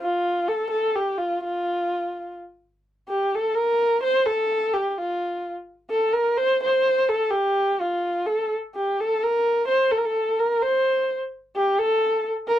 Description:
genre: persian.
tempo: 85 BPM (dotted quarters).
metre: 6/8.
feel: straight.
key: F dastgah mahur.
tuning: A4 = 443 Hz.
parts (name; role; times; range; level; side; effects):
warm kamancheh; solo; 0.0-12.6 s; F4 to C5; -21 LUFS; equal; none.
room: light reverb.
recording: dry, close 1970s-style studio recording.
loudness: -21 LUFS.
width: side -12 dB against mid.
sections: 0.0-2.9 A section; 2.9-12.6 B section.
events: none.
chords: none.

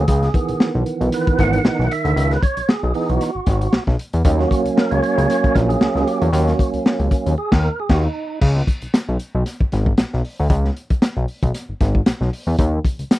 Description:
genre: funk.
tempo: 115 BPM.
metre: 4/4.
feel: swing 56% on 16ths.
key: C# dorian.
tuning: A4 = 440 Hz.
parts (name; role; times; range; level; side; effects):
tonewheel organ; stabs; 0.0-8.4 s; D#3 to F#5; -20 LUFS; right 3 dB; overdrive, fast rotary speaker.
fat analog bass; bass; 0.0-13.0 s; G#1 to E2; -19 LUFS; left 1 dB; none.
crunchy breakbeat drum kit; drums; 0.1-13.2 s; crash cymbal, hi-hat, kick drum, snare drum; -18 LUFS; left 1 dB; none.
room: little or no reverb.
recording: dry, close 1970s-style studio recording.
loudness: -16 LUFS.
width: side -16 dB against mid.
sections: 0.0-8.4 A section; 8.4-13.2 B section.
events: tonewheel organ solo 0.0-8.4; band accent 7.4-8.4.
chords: 0.1 C#m7; 4.3 D#m7; 8.4 C#7(no3); 12.6 D#5.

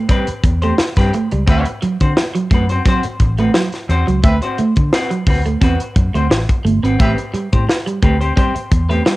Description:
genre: funk.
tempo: 87 BPM.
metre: 4/4.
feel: straight.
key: unclear.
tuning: A4 = 440 Hz.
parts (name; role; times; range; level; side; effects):
electric guitar at the edge of break-up; riff; 0.0-9.2 s; F#3 to C4; -19 LUFS; right 3 dB; phaser, cassette tape.
semi-hollow electric guitar; accompaniment; 0.1-9.1 s; C4 to C5; -22 LUFS; left 2 dB; spring reverb, cassette tape, plate reverb.
crisp fusion drum kit; drums; 0.1-9.2 s; hi-hat, kick drum, snare drum; -16 LUFS; equal; vintage 12-bit sampler grit.
vintage muted fingered electric bass; bass; 0.3-9.0 s; G1 to D3; -17 LUFS; equal; none.
warm horn section; second line; 1.5-7.1 s; C4 to E5; -23 LUFS; right 1 dB; cassette tape, plate reverb.
room: light reverb.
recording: home recording on cassette.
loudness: -13 LUFS.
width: side -19 dB against mid.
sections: 0.0-9.2 A section.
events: none.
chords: 0.0 Am9; 1.5 D13; 7.0 Am9.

